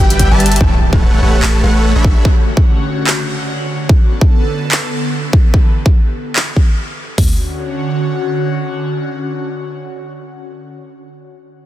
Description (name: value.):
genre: future bass.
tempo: 146 BPM.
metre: 4/4.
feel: swing 56% on 16ths, half-time.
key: D major.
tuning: A4 = 440 Hz.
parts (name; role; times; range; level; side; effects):
airy dreamy lead; arpeggios; 0.0-0.6 s; G5 to A5; -25 LUFS; left 1 dB; chorus, vintage 12-bit sampler grit, sidechain pumping, digital delay.
dense compressed supersaw; riff; 0.0-2.2 s; G3 to B5; -18 LUFS; equal; cassette tape, sidechain pumping, digital delay.
long sustained 808-style bass; bass; 0.0-2.2 s; G1 to A1; -13 LUFS; equal; sidechain pumping.
dubstep drum kit; drums; 0.1-6.5 s; handclaps, hi-hat; -20 LUFS; equal; none.
dubstep drum kit; drums; 0.2-7.3 s; hi-hat, kick drum, toms; -10 LUFS; equal; none.
airy breathy pad; sustained chords; 0.8-10.5 s; C#3 to A4; -21 LUFS; equal; chorus, phaser, sidechain pumping.
impact; sound effects; 0.6-2.3 s; none; -22 LUFS; equal; none.
room: light reverb, digital ambience.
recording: dense, heavily limited modern master.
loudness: -11 LUFS.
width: side -13 dB against mid.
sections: 0.6-7.2 A section; 7.2-10.5 B section.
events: impact 0.6-2.2.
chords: 0.0 G6; 0.6 A7; 2.0 Dmaj7; 3.9 Bm7; 5.3 G6; 7.2 Dmaj7.